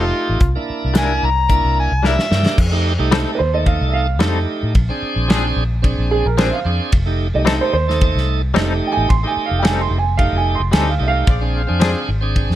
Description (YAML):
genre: straight-eighth soul blues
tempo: 110 BPM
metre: 4/4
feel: swing 54% on 16ths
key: F mixolydian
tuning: A4 = 440 Hz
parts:
  - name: overdriven harmonica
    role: melody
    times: 0.0-2.6 s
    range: F4 to Bb5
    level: -20 LUFS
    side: left 2 dB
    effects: none
  - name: bright tonewheel organ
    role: accompaniment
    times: 0.0-12.6 s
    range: A3 to A4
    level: -23 LUFS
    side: right 3 dB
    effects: slow rotary speaker, overdrive
  - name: direct-recorded clean electric guitar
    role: stabs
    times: 0.0-12.0 s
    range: F3 to Bb4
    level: -23 LUFS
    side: left 6 dB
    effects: tremolo
  - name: vintage muted fingered electric bass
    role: bass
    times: 0.0-12.6 s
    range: F1 to A2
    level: -19 LUFS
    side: equal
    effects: none
  - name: warm soul drum kit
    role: drums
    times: 0.4-12.6 s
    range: crash cymbal, hi-hat, kick drum, ride cymbal, snare drum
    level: -18 LUFS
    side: equal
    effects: none
  - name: warm upright piano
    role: second line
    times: 3.4-12.1 s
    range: Ab4 to C6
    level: -21 LUFS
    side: right 6 dB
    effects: none
  - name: bright horn section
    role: sustained chords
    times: 11.3-12.1 s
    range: Ab4 to F5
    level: -30 LUFS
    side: left 2 dB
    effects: none
room: little or no reverb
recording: none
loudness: -14 LUFS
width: side -13 dB against mid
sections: 0.0-2.6 A section; 2.6-12.6 B section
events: drum fill 2.0-2.6; upright piano solo 2.6-12.6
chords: 0.4 C9; 2.6 F9; 4.8 Bb9; 6.9 F9; 11.3 Bb9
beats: | 0.41 0.95 1.49 2.04 | 2.58 3.12 3.67 4.21 | 4.75 5.29 5.84 6.38 | 6.92 7.47 8.01 8.55 | 9.10 9.64 10.18 10.73 | 11.27 11.81 12.36